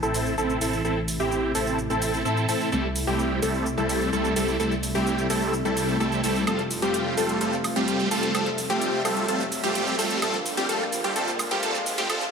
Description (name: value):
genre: EDM, festival progressive house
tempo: 128 BPM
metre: 4/4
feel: straight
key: unclear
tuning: A4 = 440 Hz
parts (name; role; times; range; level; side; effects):
- lush unison pad; sustained chords; 0.0-12.3 s; C3 to E5; -32 LUFS; equal; chorus
- plucky unison lead; arpeggios; 0.0-12.2 s; G4 to A4; -30 LUFS; equal; phaser, tape echo
- big supersaw lead; riff; 0.0-12.2 s; G3 to A4; -25 LUFS; equal; phaser, low-pass filter, tape echo
- wide detuned saw bass; bass; 0.0-12.3 s; F1 to A2; -33 LUFS; equal; chorus
- electronic cabasa, hi-hat and woodblock; drums; 0.0-12.3 s; none; -32 LUFS; right 2 dB; overdrive
- riser; sound effects; 3.0-12.3 s; none; -39 LUFS; right 1 dB; none
room: moderate lush hall reverb, RT60 1.9 s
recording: high-pass filter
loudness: -22 LUFS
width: side -6 dB against mid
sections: 0.0-12.3 A section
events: build-up 0.0-12.3; filter sweep on supersaw synth 0.0-12.3; filter sweep on digital synth lead 0.0-12.3; filter sweep on analog synth pad 0.0-12.3; filter sweep 0.0-12.3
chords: 0.0 Am; 2.7 C6; 6.5 Fadd9; 10.2 Bb